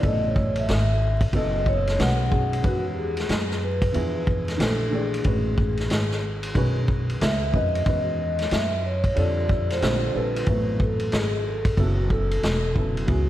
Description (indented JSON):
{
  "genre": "hip hop, jazz-hop",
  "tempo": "92 BPM",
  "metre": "4/4",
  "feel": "swing 62% on 16ths",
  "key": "E major",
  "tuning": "A4 = 440 Hz",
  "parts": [
    { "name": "vibraphone with soft mallets", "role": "melody", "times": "0.0-13.2 s", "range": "F#4 to F#5", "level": "-28 LUFS", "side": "left 1 dB", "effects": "ping-pong delay" },
    { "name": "dark upright piano", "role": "accompaniment", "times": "0.0-13.3 s", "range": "C#3 to D5", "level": "-30 LUFS", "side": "right 1 dB", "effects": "none" },
    { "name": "upright bass", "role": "bass", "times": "0.0-13.3 s", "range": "E1 to F#2", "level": "-26 LUFS", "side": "equal", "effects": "none" },
    { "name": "vintage drum kit", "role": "drums", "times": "0.0-13.3 s", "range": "hi-hat, kick drum, ride cymbal, snare drum", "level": "-25 LUFS", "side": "equal", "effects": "none" }
  ],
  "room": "light reverb, small room ambience",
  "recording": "vinyl crackle",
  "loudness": "-21 LUFS",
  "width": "side -13 dB against mid",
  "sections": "0.0-2.6 A section; 2.6-13.3 B section",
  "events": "vibraphone solo 0.0-2.6",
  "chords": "0.0 Amaj9; 1.3 F#m7; 2.0 B69; 2.6 Emaj7; 3.9 E7b9; 4.6 A#maj9; 5.3 Amaj9; 6.6 B; 7.9 Emaj7; 9.2 F; 9.8 A#maj9; 10.5 Am6; 11.8 F#m7"
}